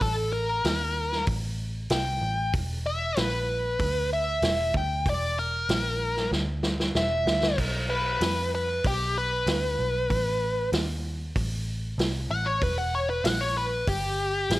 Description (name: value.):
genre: blues rock power trio and southern rock.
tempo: 95 BPM.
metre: 4/4.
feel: straight.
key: unclear.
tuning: A4 = 438 Hz.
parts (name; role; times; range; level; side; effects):
smooth overdriven lead guitar; melody; 0.0-14.6 s; G4 to G5; -27 LUFS; left 1 dB; wah, slapback echo, plate reverb.
vintage muted picked electric bass; bass; 0.0-14.6 s; E1 to F2; -30 LUFS; equal; none.
vintage drum kit; drums; 0.0-14.6 s; crash cymbal, hi-hat, kick drum, snare drum; -30 LUFS; equal; none.
room: light reverb.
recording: none.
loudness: -24 LUFS.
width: side -17 dB against mid.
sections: 0.0-14.6 A section.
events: lead electric guitar solo 0.0-14.6; drum fill 6.3-7.6.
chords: 0.0 N.C.; 0.6 D#5; 1.3 Am7; 2.5 N.C.; 3.8 Bmadd11/D; 4.4 Em7b5; 5.7 N.C.; 6.9 Dsus2/E; 7.6 N.C.; 8.8 Bm; 10.1 Asus2; 10.7 N.C.; 11.4 Am; 12.6 Esus2; 13.2 F#add11/A#; 13.9 N.C..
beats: | 0.02 0.65 1.28 1.91 | 2.54 3.17 3.80 4.43 | 5.06 5.69 6.32 6.95 | 7.58 8.21 8.84 9.47 | 10.10 10.72 11.35 11.98 | 12.61 13.24 13.87 14.50.